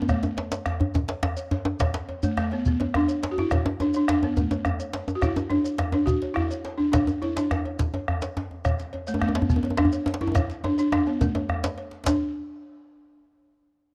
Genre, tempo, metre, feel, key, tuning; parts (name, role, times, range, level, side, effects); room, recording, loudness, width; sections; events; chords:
west african traditional, West African drum ensemble; 140 BPM (dotted quarters); 12/8; straight; D major pentatonic; A4 = 440 Hz
balafon; melody; 0.0-12.2 s; A3 to F#4; -28 LUFS; equal
djembe; percussion; 0.0-12.2 s; -30 LUFS; equal
bombo; percussion; 0.1-12.2 s; -31 LUFS; equal
cowbell; percussion; 0.1-12.2 s; -41 LUFS; equal
djembe; percussion; 0.1-12.2 s; -35 LUFS; equal
shekere; percussion; 0.1-12.2 s; -35 LUFS; equal
studio ambience; dry, close 1970s-style studio recording; -25 LUFS; mono
0.0-12.1 A section; 12.1-13.8 B section
drum fill 10.4-12.1